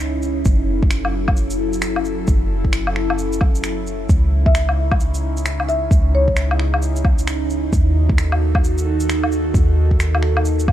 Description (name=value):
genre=future garage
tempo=132 BPM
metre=4/4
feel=swing 62% on 16ths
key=C# minor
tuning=A4 = 440 Hz
part: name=warbly tape-like pad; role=sustained chords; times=0.0-10.7 s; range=C#3 to A4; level=-23 LUFS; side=right 1 dB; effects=chorus, built-in reverb, phaser, sidechain pumping
part: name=soft 808-style bass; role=bass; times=0.0-10.7 s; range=F#1 to D#2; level=-19 LUFS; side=equal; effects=sidechain pumping
part: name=electronic shaker, finger snaps and woodblock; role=drums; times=0.2-10.7 s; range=none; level=-25 LUFS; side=left 2 dB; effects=none
part: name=electronic kick drum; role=drums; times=0.5-10.7 s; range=none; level=-17 LUFS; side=equal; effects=none
part: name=marimba with medium mallets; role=melody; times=4.5-6.6 s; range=C#5 to E5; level=-26 LUFS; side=left 1 dB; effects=vintage 12-bit sampler grit, tape echo
room=digital ambience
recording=cassette tape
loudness=-15 LUFS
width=side -12 dB against mid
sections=0.0-10.7 A section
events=none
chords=0.5 F#m7; 4.1 C#madd9; 7.7 D#dim